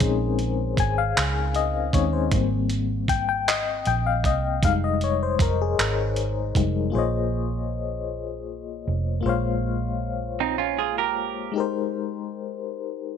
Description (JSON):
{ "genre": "slow six-eight R&B", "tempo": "52 BPM (dotted quarters)", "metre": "6/8", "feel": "straight", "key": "Bb dorian", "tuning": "A4 = 440 Hz", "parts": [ { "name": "FM electric piano with tremolo", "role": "accompaniment", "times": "0.0-13.2 s", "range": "G3 to Ab5", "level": "-25 LUFS", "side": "left 9 dB", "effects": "none" }, { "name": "vintage muted fingered electric bass", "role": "bass", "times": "0.0-13.2 s", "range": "F1 to Eb2", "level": "-26 LUFS", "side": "right 2 dB", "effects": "none" }, { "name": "dusty soul sampler-style drum kit", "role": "drums", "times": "0.0-6.7 s", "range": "handclaps, hi-hat, kick drum", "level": "-24 LUFS", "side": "right 2 dB", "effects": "none" }, { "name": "semi-hollow electric guitar", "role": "second line", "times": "10.4-11.5 s", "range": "C4 to Bb4", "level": "-24 LUFS", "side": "right 15 dB", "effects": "none" } ], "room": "light reverb, digital ambience", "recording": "1960s-style stereo with parts hard left and right", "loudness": "-22 LUFS", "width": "side -7 dB against mid", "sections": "0.0-6.9 A section; 6.9-13.2 B section", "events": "FM electric piano solo 0.0-6.9", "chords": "0.0 Bbm11; 2.3 Abmaj9; 4.6 Fm7; 6.9 Bbm11; 11.6 Abmaj9", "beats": "| 0.01 1.17 | 2.32 3.47 | 4.63 5.78 | 6.94 8.09 | 9.24 10.40 | 11.55 12.71" }